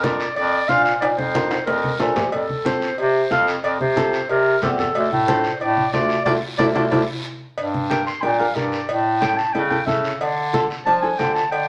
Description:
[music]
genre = latin, cumbia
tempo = 183 BPM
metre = 4/4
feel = straight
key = D minor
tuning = A4 = 441 Hz
[part]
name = mellow clarinet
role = melody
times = 0.0-11.7 s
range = G4 to C6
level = -25 LUFS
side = equal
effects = none
[part]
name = flamenco guitar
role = accompaniment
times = 0.0-11.4 s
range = C4 to C5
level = -27 LUFS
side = equal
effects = none
[part]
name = clear bass clarinet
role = bass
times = 0.0-11.7 s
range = D2 to F3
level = -24 LUFS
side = equal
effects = none
[part]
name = congas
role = percussion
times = 0.0-11.7 s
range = none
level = -32 LUFS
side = equal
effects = none
[part]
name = guiro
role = percussion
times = 0.0-11.7 s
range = none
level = -36 LUFS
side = equal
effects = none
[part]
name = cowbell and timbales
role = percussion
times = 0.4-11.7 s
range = none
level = -30 LUFS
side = equal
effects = none
[sound]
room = wet studio reverb, RT60 0.8 s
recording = none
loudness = -20 LUFS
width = mono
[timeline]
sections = 0.0-7.6 A section; 7.6-11.7 B section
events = drum fill 1.0-2.3, 6.6-7.6; band accent 6.3-7.6; nylon-string guitar fill 7.1-7.6; clarinet solo 7.6-11.7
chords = 0.0 Bb; 2.3 F; 5.0 Dmadd9; 7.6 Gm; 8.9 A; 10.2 Dm

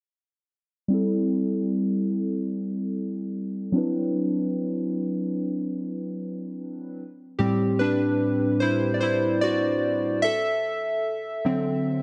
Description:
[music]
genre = R&B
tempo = 74 BPM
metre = 4/4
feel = swing 54% on 16ths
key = A dorian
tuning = A4 = 440 Hz
[part]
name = warm analog keys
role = solo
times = 0.9-12.0 s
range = A2 to E5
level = -26 LUFS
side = equal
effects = chorus
[sound]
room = moderate plate reverb, RT60 3.1 s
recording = dark, warm production, low-pass filter, nothing above 10.4 kHz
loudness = -26 LUFS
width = mono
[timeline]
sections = 0.9-7.4 A section; 7.4-12.0 B section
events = filter sweep 0.9-7.4; synth keys solo 7.4-12.0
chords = 0.9 Am7; 3.7 D13; 7.0 N.C.; 7.4 Am7; 10.2 D9

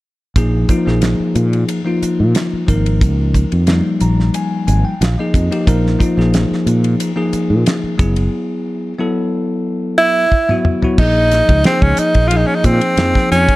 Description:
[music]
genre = electric jazz fusion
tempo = 90 BPM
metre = 4/4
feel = straight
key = unclear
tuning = A4 = 440 Hz
[part]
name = bell-like tine electric piano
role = accompaniment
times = 0.4-13.6 s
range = F3 to Bb5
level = -18 LUFS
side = left 2 dB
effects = none
[part]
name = fretless electric bass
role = bass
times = 0.4-13.5 s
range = Gb1 to Bb2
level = -15 LUFS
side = equal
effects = none
[part]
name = damped 70s drum kit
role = drums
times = 0.4-13.6 s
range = crash cymbal, hi-hat, kick drum, ride cymbal, snare drum, toms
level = -17 LUFS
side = equal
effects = none
[part]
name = edgy tenor saxophone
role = melody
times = 10.0-13.6 s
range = C4 to F4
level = -14 LUFS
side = right 1 dB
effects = none
[sound]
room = light reverb, small room ambience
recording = dark, warm production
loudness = -12 LUFS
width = side -18 dB against mid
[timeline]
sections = 0.4-11.0 A section; 11.0-13.6 B section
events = tine electric piano fill 3.7-5.7; drum fill 10.3-11.0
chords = 0.4 Bb7(no3); 8.0 Gbm11; 11.0 Bbm11

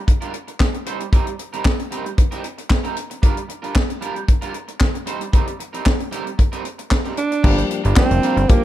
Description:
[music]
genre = early-eighties boogie funk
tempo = 114 BPM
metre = 4/4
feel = straight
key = C minor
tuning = A4 = 439 Hz
[part]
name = electric guitar at the edge of break-up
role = riff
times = 0.1-8.5 s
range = G3 to C5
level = -28 LUFS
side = right 5 dB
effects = lush chorus
[part]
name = tight funk drum kit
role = drums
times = 0.1-8.6 s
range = crash cymbal, handclaps, hi-hat, kick drum, snare drum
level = -17 LUFS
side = equal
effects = none
[part]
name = breathy alto saxophone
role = melody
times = 7.2-8.6 s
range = Bb3 to D4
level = -20 LUFS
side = right 4 dB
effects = none
[part]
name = barky tine electric piano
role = accompaniment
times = 7.4-8.6 s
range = F3 to G4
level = -23 LUFS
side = left 4 dB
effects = overdrive
[part]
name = phased string machine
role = sustained chords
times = 7.4-8.6 s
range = F4 to G5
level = -34 LUFS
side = right 2 dB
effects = none
[part]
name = plucky analog bass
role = bass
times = 7.4-8.5 s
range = F1 to G1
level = -17 LUFS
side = equal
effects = none
[sound]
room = small room ambience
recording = dark, warm production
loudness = -17 LUFS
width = side -13 dB against mid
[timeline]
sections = 0.0-7.4 A section; 7.4-8.6 B section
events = none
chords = 0.0 Gm7; 0.9 Cm7; 3.2 Gm7; 5.1 Cm7; 7.4 Gm7

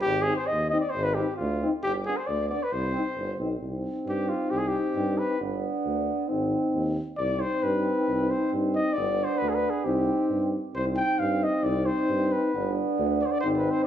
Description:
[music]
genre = balkan folk, Balkan brass band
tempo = 134 BPM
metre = 2/4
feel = swing 56% on 16ths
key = C harmonic minor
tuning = A4 = 438 Hz
[part]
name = dark trumpet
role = melody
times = 0.0-13.9 s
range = F4 to G5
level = -28 LUFS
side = left 1 dB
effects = none
[part]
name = clear tuba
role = bass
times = 0.0-13.7 s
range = G1 to G2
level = -31 LUFS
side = right 1 dB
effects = none
[part]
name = clear trombone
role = accompaniment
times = 0.3-13.9 s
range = B3 to C4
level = -33 LUFS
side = right 4 dB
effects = none
[part]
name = mellow euphonium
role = accompaniment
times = 0.3-13.9 s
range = D4 to Eb4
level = -29 LUFS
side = left 2 dB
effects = none
[sound]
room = moderate large studio reverb, RT60 1.2 s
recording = band playing live in one room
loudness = -24 LUFS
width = side -10 dB against mid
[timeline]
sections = 0.0-3.6 A section; 3.6-13.9 B section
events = trumpet solo 3.6-13.9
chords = 0.0 Ab; 1.8 G; 2.7 Cm; 5.4 G; 6.3 Ab; 7.2 Cm; 9.0 G; 9.9 Cm; 12.5 G

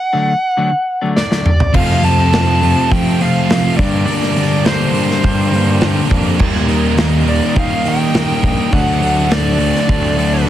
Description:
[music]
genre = quiet-loud alternative rock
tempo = 103 BPM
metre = 4/4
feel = straight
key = G minor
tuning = A4 = 440 Hz
[part]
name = dark smooth lead guitar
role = melody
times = 0.0-10.4 s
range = C5 to A5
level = -19 LUFS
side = right 1 dB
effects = overdrive
[part]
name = clean electric guitar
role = arpeggios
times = 0.1-1.5 s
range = D3 to D4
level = -17 LUFS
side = left 3 dB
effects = analog chorus
[part]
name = big rock drum kit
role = drums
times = 1.2-10.3 s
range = crash cymbal, hi-hat, kick drum, snare drum, toms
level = -18 LUFS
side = equal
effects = none
[part]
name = thick fuzz guitar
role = riff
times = 1.7-10.5 s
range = F2 to Eb4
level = -18 LUFS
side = left 6 dB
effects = distortion
[part]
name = thick fuzz guitar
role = riff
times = 1.7-10.5 s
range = F2 to F4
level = -20 LUFS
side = right 10 dB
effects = distortion
[part]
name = fuzz picked electric bass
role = bass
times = 1.7-10.5 s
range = Bb1 to F3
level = -17 LUFS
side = right 1 dB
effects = overdrive
[part]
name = bright tonewheel organ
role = sustained chords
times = 1.8-10.5 s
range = C4 to Bb5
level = -29 LUFS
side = equal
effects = none
[sound]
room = light reverb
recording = dense, heavily limited modern master, vinyl crackle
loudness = -12 LUFS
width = side -12 dB against mid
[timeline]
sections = 0.0-1.7 A section; 1.7-10.5 B section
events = break 0.0-1.7; drum fill 1.2-1.7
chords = 0.0 D; 1.7 F; 3.8 Gm; 6.4 Eb; 8.7 D

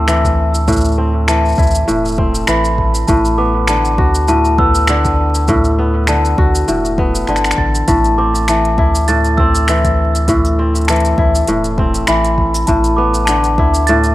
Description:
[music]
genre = folktronica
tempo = 100 BPM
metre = 4/4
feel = swing 56% on 16ths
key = A dorian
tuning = A4 = 442 Hz
[part]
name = glockenspiel with rubber mallets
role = second line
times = 0.0-14.1 s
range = A5 to A6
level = -18 LUFS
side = equal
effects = vintage 12-bit sampler grit, tape echo
[part]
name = kora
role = arpeggios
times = 0.0-14.1 s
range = A2 to F#4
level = -16 LUFS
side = equal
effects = low-pass filter, digital delay
[part]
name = warm sub bass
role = bass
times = 0.0-14.1 s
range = E1 to D2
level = -16 LUFS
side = equal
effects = none
[part]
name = organic electronic drum kit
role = drums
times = 0.1-14.1 s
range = cabasa, finger snaps, hi-hat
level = -21 LUFS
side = equal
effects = none
[part]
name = electronic kick drum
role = drums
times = 0.2-13.7 s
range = none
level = -17 LUFS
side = equal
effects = none
[sound]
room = light reverb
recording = rough home demo mix, vinyl crackle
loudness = -11 LUFS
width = side -16 dB against mid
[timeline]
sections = 0.0-14.1 A section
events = none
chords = 0.0 Am; 3.1 Gmaj7/A (rootless); 7.9 Am; 12.7 E7sus4

